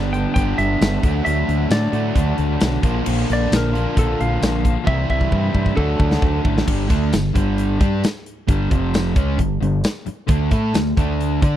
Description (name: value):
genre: classic rock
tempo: 133 BPM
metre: 4/4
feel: straight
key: unclear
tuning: A4 = 440 Hz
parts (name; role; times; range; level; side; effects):
- clean lap steel guitar; melody; 0.0-6.4 s; A4 to G5; -25 LUFS; equal; slapback echo
- crunchy overdriven guitar; riff; 0.0-11.6 s; F2 to D5; -24 LUFS; right 10 dB; none
- distorted electric guitar; riff; 0.0-11.6 s; F2 to D5; -25 LUFS; left 11 dB; distortion
- growling fingered electric bass; bass; 0.0-11.6 s; F1 to D3; -21 LUFS; equal; overdrive
- big rock drum kit; drums; 0.1-11.5 s; crash cymbal, hi-hat, kick drum, snare drum, tambourine; -20 LUFS; equal; none
room: small room ambience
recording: dry, close 1970s-style studio recording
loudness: -16 LUFS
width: side -11 dB against mid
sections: 0.0-6.7 A section; 6.7-11.6 B section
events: drum fill 4.9-6.7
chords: 0.0 G; 1.0 D; 2.8 Bb; 4.9 C; 5.8 D; 6.7 G5; 8.7 F5; 9.2 G5; 10.3 D5